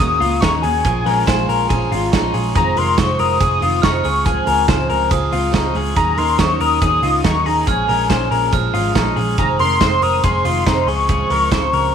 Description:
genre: jangly indie pop.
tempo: 141 BPM.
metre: 4/4.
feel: straight.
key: Db major.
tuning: A4 = 441 Hz.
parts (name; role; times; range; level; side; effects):
warm velvety synth lead; melody; 0.0-11.9 s; Ab5 to Eb6; -19 LUFS; left 2 dB; chorus.
glockenspiel with rubber mallets; second line; 0.0-11.9 s; G5 to F6; -27 LUFS; right 10 dB; none.
picked steel-string acoustic guitar; accompaniment; 0.0-11.9 s; F2 to Bb4; -23 LUFS; right 8 dB; none.
electric guitar through a small old amp; arpeggios; 0.0-11.9 s; Eb4 to C5; -21 LUFS; left 14 dB; none.
vintage muted picked electric bass; bass; 0.0-11.9 s; F1 to Eb2; -21 LUFS; equal; none.
loose indie drum kit; drums; 0.0-11.8 s; hi-hat, kick drum, ride cymbal, snare drum; -21 LUFS; right 2 dB; none.
room: light reverb, small room ambience.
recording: 1960s-style stereo with parts hard left and right, vinyl crackle.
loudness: -14 LUFS.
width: side -8 dB against mid.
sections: 0.0-11.9 A section.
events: none.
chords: 0.0 Ebm7; 0.9 Bbm7; 2.6 Fm7; 4.0 Dbmaj7; 6.0 Ebm7; 7.7 Bbm7; 9.4 Fm7; 10.9 Dbmaj7.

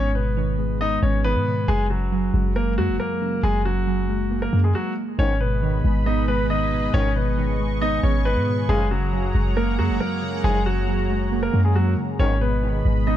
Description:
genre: hip hop.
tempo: 137 BPM.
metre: 4/4.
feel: half-time.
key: G# minor.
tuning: A4 = 440 Hz.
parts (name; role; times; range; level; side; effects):
warm concert grand piano; melody; 0.0-13.2 s; F#3 to D#5; -25 LUFS; left 2 dB; low-pass filter, tape echo.
warbly lo-fi synth keys; accompaniment; 0.0-13.2 s; F#2 to B3; -25 LUFS; right 2 dB; chorus, low-pass filter, tape echo.
clean 808-style bass; bass; 0.0-13.2 s; F#1 to G#2; -22 LUFS; equal; none.
sweeping resonant pad; sustained chords; 5.5-13.2 s; G#4 to C#6; -33 LUFS; equal; chorus.
mellow brass ensemble; stabs; 5.2-12.3 s; A#1 to D#3; -35 LUFS; left 4 dB; tape echo.
room: small room ambience.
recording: echo-heavy mix.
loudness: -19 LUFS.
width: side -11 dB against mid.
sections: 0.0-5.2 A section; 5.2-13.2 B section.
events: stop 4.7-5.2.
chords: 0.0 G#m; 1.7 F#add9; 5.2 G#m; 8.7 F#add9; 12.2 G#m.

